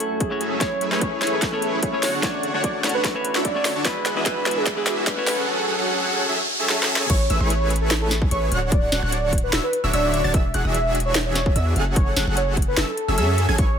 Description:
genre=future bass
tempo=148 BPM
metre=4/4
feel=half-time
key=A major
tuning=A4 = 439 Hz
part: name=warm velvety synth lead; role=melody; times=0.0-13.8 s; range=G#4 to E5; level=-26 LUFS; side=right 1 dB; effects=chorus, vintage 12-bit sampler grit, sidechain pumping, ping-pong delay
part: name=semi-hollow electric guitar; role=accompaniment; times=0.0-5.4 s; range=G#3 to C#5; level=-28 LUFS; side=left 3 dB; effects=sidechain pumping, dub echo
part: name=ethereal airy pad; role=sustained chords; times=0.0-5.5 s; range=D2 to G#5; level=-35 LUFS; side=equal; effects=ensemble chorus, built-in reverb, sidechain pumping
part: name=trap drum kit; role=drums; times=0.0-13.7 s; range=crash cymbal, hi-hat, snare drum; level=-24 LUFS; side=equal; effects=high-pass filter on hats, high-pass filter on snare, high-pass filter on cymbals
part: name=electronic kick drum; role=drums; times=0.2-13.7 s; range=none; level=-22 LUFS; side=equal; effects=none
part: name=supersaw chords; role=riff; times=0.4-13.7 s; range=D3 to A5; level=-25 LUFS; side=equal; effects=sidechain pumping, low-pass filter
part: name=riser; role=sound effects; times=3.2-7.1 s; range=none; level=-29 LUFS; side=right 1 dB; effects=none
part: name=wide unison pluck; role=arpeggios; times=7.1-13.7 s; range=C#6 to A6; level=-31 LUFS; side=right 1 dB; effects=cassette tape, sidechain pumping
part: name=long sustained 808-style bass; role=bass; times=7.1-13.8 s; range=D1 to F#2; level=-23 LUFS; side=equal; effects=sidechain pumping
room=light reverb, digital ambience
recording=high-pass filter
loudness=-19 LUFS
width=side -8 dB against mid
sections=0.0-7.1 A section; 7.1-13.8 B section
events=build-up 0.0-7.1; filter sweep on ambient pad 0.0-7.1; filter sweep 0.0-7.1; drum fill 0.6-5.5, 6.7-7.1; riser 3.2-7.1; drop 7.1-13.8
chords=0.0 F#m7; 0.6 Amaj7; 2.2 Dmaj7; 3.9 E7; 5.3 F#m7; 7.1 Amaj7; 8.7 Dmaj7; 10.3 E7; 11.8 F#m7

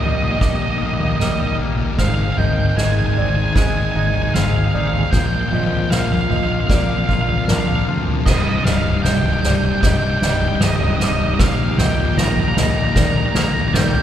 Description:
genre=post-rock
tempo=76 BPM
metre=4/4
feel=straight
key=unclear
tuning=A4 = 441 Hz
part: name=octave-fuzz lead guitar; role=melody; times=0.0-14.0 s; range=Eb5 to Bb5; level=-23 LUFS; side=right 3 dB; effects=distortion
part: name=clear studio string section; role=sustained chords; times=0.0-14.0 s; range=D3 to Ab4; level=-32 LUFS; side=equal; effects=none
part: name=felt-muted upright piano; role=arpeggios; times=0.0-14.0 s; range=Bb4 to D6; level=-28 LUFS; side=right 3 dB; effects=none
part: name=twangy electric guitar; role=arpeggios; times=0.0-14.0 s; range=C2 to F4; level=-27 LUFS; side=left 1 dB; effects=none
part: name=sludgy distorted guitar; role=riff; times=0.0-14.0 s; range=C2 to F3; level=-22 LUFS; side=left 3 dB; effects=overdrive
part: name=growling fingered electric bass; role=bass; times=0.0-14.0 s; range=C1 to D2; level=-23 LUFS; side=equal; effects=overdrive
part: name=soft-mallet drum kit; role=drums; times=0.0-14.0 s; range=crash cymbal, kick drum, snare drum, toms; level=-20 LUFS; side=equal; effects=none
room=wet cathedral reverb, RT60 4.1 s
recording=recorded in a church or concert hall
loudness=-15 LUFS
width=side -10 dB against mid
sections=0.0-14.0 A section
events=build-up 0.0-14.0; drum fill 0.0-14.0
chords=0.0 Ebmaj7/Bb; 2.0 Abadd9; 5.1 Bbadd9; 8.3 Cmadd9; 11.4 Ebmaj7/Bb

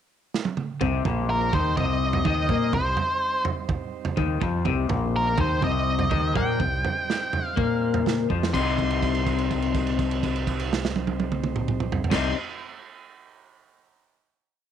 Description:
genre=psychedelic rock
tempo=124 BPM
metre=4/4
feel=straight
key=C minor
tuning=A4 = 438 Hz
part: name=crunchy breakbeat drum kit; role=drums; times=0.3-12.2 s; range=crash cymbal, kick drum, snare drum, toms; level=-28 LUFS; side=right 4 dB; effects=none
part: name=overdriven combo organ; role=sustained chords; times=0.8-12.3 s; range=G3 to C5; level=-38 LUFS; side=right 12 dB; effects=spring reverb
part: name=electric guitar through a small old amp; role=riff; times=0.8-12.3 s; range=Bb2 to Eb4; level=-27 LUFS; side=left 12 dB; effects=harmonic tremolo
part: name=growling fingered electric bass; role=bass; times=0.8-12.3 s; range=Bb1 to Bb2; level=-27 LUFS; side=equal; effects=overdrive
part: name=octave-fuzz lead guitar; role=melody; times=1.3-12.3 s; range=Bb4 to C6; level=-27 LUFS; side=right 1 dB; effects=distortion, slapback echo
room=studio reverb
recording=1960s-style stereo with parts hard left and right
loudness=-22 LUFS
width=side -9 dB against mid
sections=0.0-0.8 pickup bar; 0.8-8.5 groove; 8.5-12.4 final chord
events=drum fill 0.3-0.8, 8.3; held note 8.5-12.1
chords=0.0 N.C.; 0.8 Cm

